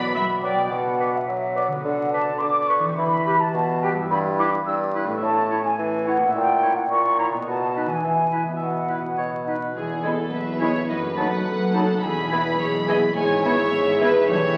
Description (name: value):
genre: cinematic, playful, whimsical film cue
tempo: 106 BPM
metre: 2/4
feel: straight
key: B minor, E major from 5.2 s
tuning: A4 = 439 Hz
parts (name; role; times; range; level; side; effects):
- warm chamber violin section; melody; 0.0-0.1, 10.3-14.6 s; D#5 to B5; -32 LUFS; equal; none
- rich studio violin section; second line; 0.0-0.1, 9.8-14.6 s; G#4 to D#5; -28 LUFS; equal; none
- warm oboe; second line; 0.0-14.6 s; B4 to B5; -36 LUFS; equal; none
- dark symphonic viola section; accompaniment; 0.0-0.7, 10.0-14.1 s; A3 to E5; -34 LUFS; equal; none
- warm French horn section; sustained chords; 0.0-0.1, 9.8-14.6 s; G#3 to G4; -33 LUFS; equal; none
- concert harp; arpeggios; 0.0-14.6 s; E2 to E5; -29 LUFS; equal; none
- mellow large flute ensemble; second line; 0.1-14.6 s; D5 to E6; -26 LUFS; equal; none
- rich studio double bass section; bass; 0.1-0.6, 9.8-14.6 s; E1 to B1; -39 LUFS; equal; none
- warm studio cello section; bass; 0.1-0.6, 9.8-14.6 s; E2 to B2; -32 LUFS; equal; none
- clear clarinet; second line; 0.4-14.6 s; D#4 to B4; -37 LUFS; equal; none
- clear bassoon; accompaniment; 0.4-14.6 s; G2 to G#3; -29 LUFS; equal; none
room: wet recital hall reverb, RT60 1.8 s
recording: very old 78 rpm record, vinyl crackle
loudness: -22 LUFS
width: mono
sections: 0.7-9.8 A section; 9.8-14.6 B section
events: none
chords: 0.0 Bm; 1.8 Bm/D; 3.0 Em; 4.1 Em/G; 5.2 A; 6.3 A#dim; 7.5 B; 8.0 E; 8.6 Bsus4; 9.2 B; 9.8 E; 10.9 B7/F#; 12.0 E; 13.2 E/G#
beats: 0.14 | 0.71 1.28 | 1.85 2.41 | 2.98 3.54 | 4.10 4.66 | 5.22 5.79 | 6.35 6.91 | 7.48 8.04 | 8.62 9.19 | 9.77 10.34 | 10.90 11.47 | 12.03 12.60 | 13.16 13.72 | 14.29